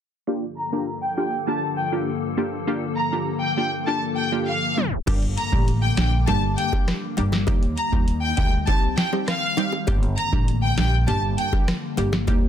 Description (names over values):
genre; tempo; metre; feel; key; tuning
dancehall; 100 BPM; 4/4; straight; G minor; A4 = 440 Hz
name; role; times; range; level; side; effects
punchy chord stab; accompaniment; 0.3-12.5 s; G3 to G4; -27 LUFS; right 2 dB; chorus, low-pass filter
glassy FM pad; sustained chords; 0.5-12.5 s; G2 to A4; -30 LUFS; left 4 dB; ensemble chorus, built-in reverb, sidechain pumping, low-pass filter
bright studio violin section; melody; 0.6-11.5 s; F5 to Bb5; -26 LUFS; left 1 dB; low-pass filter, digital delay
upright bass; bass; 5.1-12.5 s; G1 to Eb2; -23 LUFS; equal; none
booming analog drum machine; drums; 5.1-12.5 s; crash cymbal, hi-hat, kick drum, rim click, snare drum; -22 LUFS; equal; vintage 12-bit sampler grit
bongos; percussion; 5.1-12.4 s; none; -32 LUFS; left 9 dB; none
room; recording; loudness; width
studio reverb; dense, heavily limited modern master, tape stop; -20 LUFS; side -9 dB against mid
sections
0.3-5.1 A section; 5.1-12.5 B section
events
filter sweep 0.3-5.1; tape stop 4.8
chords
0.3 Gm7; 5.1 Gm; 7.5 Eb; 8.7 Cm; 9.9 Gm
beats
| 0.28 0.88 1.48 2.08 | 2.67 3.27 3.88 4.47 | 5.08 5.67 6.28 6.88 | 7.47 8.07 8.68 9.28 | 9.88 10.47 11.07 11.68 | 12.28